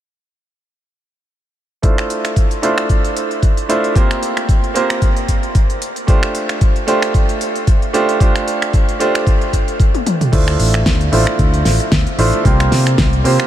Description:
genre	nu-disco, nu disco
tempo	113 BPM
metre	4/4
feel	swing 55% on 16ths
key	unclear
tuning	A4 = 440 Hz
part	bright baby grand piano	accompaniment	1.8-13.5 s	A3 to C5	-17 LUFS	right 2 dB	sidechain pumping, low-pass filter, tape echo
part	electronic kick drum	drums	1.8-13.1 s	none	-14 LUFS	equal	none
part	pop drum kit	drums	1.8-13.5 s	crash cymbal, finger snaps, hi-hat, snare drum, toms	-21 LUFS	equal	none
part	fingered electric bass with an envelope filter	bass	10.3-13.4 s	A1 to C3	-15 LUFS	equal	none
room	light reverb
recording	none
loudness	-12 LUFS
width	side -12 dB against mid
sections	1.8-10.3 A section; 10.3-13.5 B section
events	drum fill 9.9-10.3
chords	1.8 Dm9; 4.0 C7sus4; 5.8 F69; 10.3 Dm9; 12.5 C7sus4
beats	| 1.83 2.37 2.90 3.43 | 3.96 4.49 5.02 5.55 | 6.08 6.61 7.14 7.67 | 8.21 8.74 9.27 9.80 | 10.33 10.86 11.39 11.92 | 12.45 12.98

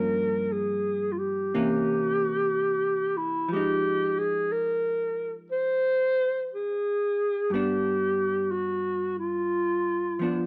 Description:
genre	jazz ballad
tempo	60 BPM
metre	4/4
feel	swing 66% on 8ths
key	unclear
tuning	A4 = 436 Hz
part	breathy clarinet	melody	0.0-10.5 s	E4 to C5	-28 LUFS	equal	none
part	vintage hollow-body jazz guitar	accompaniment	0.0-10.5 s	G2 to Eb4	-33 LUFS	equal	none
room	light reverb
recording	dark, warm production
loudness	-27 LUFS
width	mono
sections	0.0-10.5 A section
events	none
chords	0.0 Gm7b5; 1.5 C7b9; 3.5 Fm7; 7.5 G7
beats	0.53 1.53 2.53 | 3.53 4.53 5.52 6.52 | 7.52 8.53 9.53

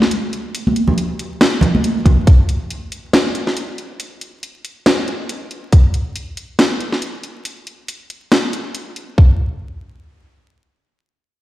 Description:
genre	dubstep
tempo	139 BPM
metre	4/4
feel	swing 56% on 16ths, half-time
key	none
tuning	none
part	garage drum kit	drums	0.0-9.1 s	hi-hat, snare drum	-17 LUFS	equal	none
part	congas	percussion	0.7-2.2 s	none	-17 LUFS	right 1 dB	dub echo
part	electronic kick drum	drums	2.1-2.4, 5.7-5.8, 9.2-9.3 s	none	-8 LUFS	equal	none
room	moderate lush hall reverb, RT60 2.1 s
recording	played on a big sound system in a bare room, large studio reverb, vinyl crackle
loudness	-14 LUFS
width	side -15 dB against mid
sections	0.0-9.2 A section; 9.2-11.4 B section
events	none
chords	none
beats	0.11 | 0.55 0.98 1.41 1.84 | 2.27 2.70 3.13 3.57 | 4.00 4.43 4.86 5.29 | 5.72 6.16 6.59 7.02 | 7.45 7.88 8.31 8.75 | 9.18

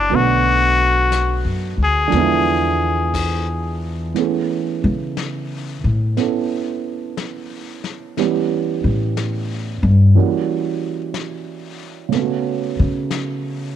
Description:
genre	jazz ballad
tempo	60 BPM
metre	4/4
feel	swing 67% on 8ths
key	A major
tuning	A4 = 440 Hz
part	trumpet with straight mute	melody	0.0-3.8 s	D4 to G#4	-18 LUFS	left 4 dB	none
part	warm concert grand piano	accompaniment	0.0-13.8 s	C#3 to C#5	-22 LUFS	right 9 dB	none
part	upright bass	bass	0.0-13.7 s	B1 to C#3	-18 LUFS	left 1 dB	none
part	vintage brush drum kit	drums	0.1-13.8 s	brushed snare drum, crash cymbal, hi-hat, kick drum, snare drum	-32 LUFS	left 9 dB	none
room	light reverb, small room ambience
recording	1960s-style stereo with parts hard left and right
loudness	-16 LUFS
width	side -10 dB against mid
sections	0.0-4.2 A section; 4.2-13.8 B section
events	stop 3.1-4.2; upright bass solo 4.2-13.8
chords	0.1 Bm7; 2.1 E7b9; 4.2 Amaj9; 8.2 C#m7b5; 10.2 F#7b9; 12.1 Bsus2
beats	| 0.11 1.12 2.12 3.15 | 4.16 5.17 6.18 7.18 | 8.17 9.16 10.15 11.14 | 12.12 13.11

